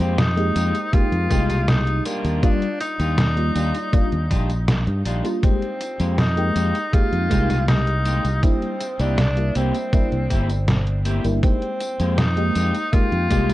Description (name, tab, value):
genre	vaporwave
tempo	80 BPM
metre	4/4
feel	straight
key	F dorian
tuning	A4 = 441 Hz
part	warm tenor saxophone	melody	0.0-13.5 s	Bb3 to F4	-26 LUFS	left 1 dB	tape echo
part	electric guitar at the edge of break-up	riff	0.0-13.5 s	G3 to G4	-29 LUFS	left 2 dB	wide subtle chorus, vintage 12-bit sampler grit
part	fingered electric bass	bass	0.0-13.5 s	G1 to G2	-21 LUFS	equal	tube saturation
part	detuned 8-bit digital drum machine	drums	0.0-13.5 s	hi-hat, snare drum, tambourine	-23 LUFS	equal	none
part	FM electric piano with soft pad layer	accompaniment	0.4-13.5 s	G3 to D5	-26 LUFS	equal	phaser, wide subtle chorus, cassette tape
part	electronic kick drum	drums	0.9-13.5 s	none	-19 LUFS	equal	none
room	little or no reverb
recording	dark, warm production, cassette tape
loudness	-18 LUFS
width	side -16 dB against mid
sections	0.0-13.5 A section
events	none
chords	0.0 Fm11; 2.1 Ebmaj9; 5.4 Fm11; 8.4 C7; 11.4 Fm11